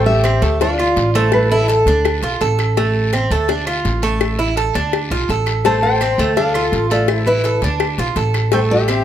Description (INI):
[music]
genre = latin, Cuban son and guajira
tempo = 167 BPM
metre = 4/4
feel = straight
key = A minor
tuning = A4 = 440 Hz
[part]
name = nylon-string guitar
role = melody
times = 0.0-1.8, 5.7-9.0 s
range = A4 to A5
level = -18 LUFS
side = equal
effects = none
[part]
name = breathy bright concert flute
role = second line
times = 0.0-1.8, 5.6-9.0 s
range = E4 to C5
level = -22 LUFS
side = left 5 dB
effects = none
[part]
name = Cuban tres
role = arpeggios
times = 0.0-9.0 s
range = A3 to A4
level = -19 LUFS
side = right 4 dB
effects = none
[part]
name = upright bass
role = bass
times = 0.0-9.0 s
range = A1 to D2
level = -19 LUFS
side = equal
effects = none
[part]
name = cowbell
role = percussion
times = 0.2-9.0 s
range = none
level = -23 LUFS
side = left 11 dB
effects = none
[part]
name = guiro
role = percussion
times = 0.2-9.0 s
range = none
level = -31 LUFS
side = left 5 dB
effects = none
[part]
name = claves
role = percussion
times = 0.3-9.0 s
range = none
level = -29 LUFS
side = right 2 dB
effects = none
[sound]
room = light reverb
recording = none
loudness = -14 LUFS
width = side -10 dB against mid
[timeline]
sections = 0.0-9.0 A section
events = none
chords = 0.0 Am7; 0.6 Dm; 1.3 A5; 2.0 Dm; 2.8 Am; 3.5 Dm; 4.2 A5; 4.9 Dm; 5.6 Am7; 6.4 Dm; 7.1 Asus2; 7.8 Dm; 8.5 Am7